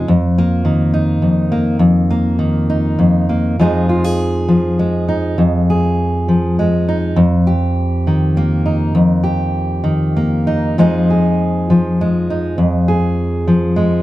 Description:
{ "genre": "folk, solo fingerstyle acoustic guitar", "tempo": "67 BPM (dotted quarters)", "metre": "6/8", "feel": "rubato", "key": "F minor", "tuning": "A4 = 441 Hz", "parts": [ { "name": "fingerpicked steel-string acoustic guitar", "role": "solo", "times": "0.0-14.0 s", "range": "F2 to Ab4", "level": "-12 LUFS", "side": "equal", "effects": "none" } ], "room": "little or no reverb", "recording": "close, detailed microphones", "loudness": "-13 LUFS", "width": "side -16 dB against mid", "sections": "0.0-3.6 A section; 3.6-14.0 B section", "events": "none", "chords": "0.1 Ebsus2/F; 3.6 Fm7; 7.2 Ebadd9/F; 10.8 Fm7" }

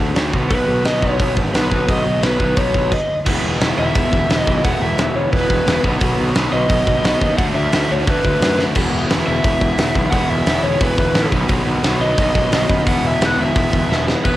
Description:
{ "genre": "punk rock", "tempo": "175 BPM", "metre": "4/4", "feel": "straight", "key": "E major from 3.3 s", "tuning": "A4 = 439 Hz", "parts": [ { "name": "distorted electric guitar", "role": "riff", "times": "0.0-14.4 s", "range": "B2 to G#4", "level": "-24 LUFS", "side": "right 6 dB", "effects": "distortion, cassette tape" }, { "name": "raw garage guitar", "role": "riff", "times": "0.0-14.4 s", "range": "E2 to D4", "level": "-25 LUFS", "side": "left 5 dB", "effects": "overdrive, cassette tape" }, { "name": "fuzz picked electric bass", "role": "bass", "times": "0.0-14.4 s", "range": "E1 to F#2", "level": "-22 LUFS", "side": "equal", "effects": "overdrive" }, { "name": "big rock drum kit", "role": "drums", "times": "0.2-14.3 s", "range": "crash cymbal, hi-hat, kick drum, snare drum", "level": "-19 LUFS", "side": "equal", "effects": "cassette tape" }, { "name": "lead guitar through a small cranked amp", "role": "melody", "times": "0.5-14.4 s", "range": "B4 to F#5", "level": "-21 LUFS", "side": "equal", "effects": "overdrive, tape echo" }, { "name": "distorted electric guitar", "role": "riff", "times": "3.3-14.4 s", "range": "E2 to D4", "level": "-25 LUFS", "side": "left 1 dB", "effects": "distortion, cassette tape" } ], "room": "small room reverb", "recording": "home recording on cassette", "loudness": "-14 LUFS", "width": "side -15 dB against mid", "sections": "0.0-3.3 A section; 3.3-14.2 B section", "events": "stop 2.9-3.3; drum fill 8.6, 13.9-14.2", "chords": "0.3 B; 3.3 E; 5.8 B; 7.4 D; 8.8 E; 11.3 B; 12.9 E" }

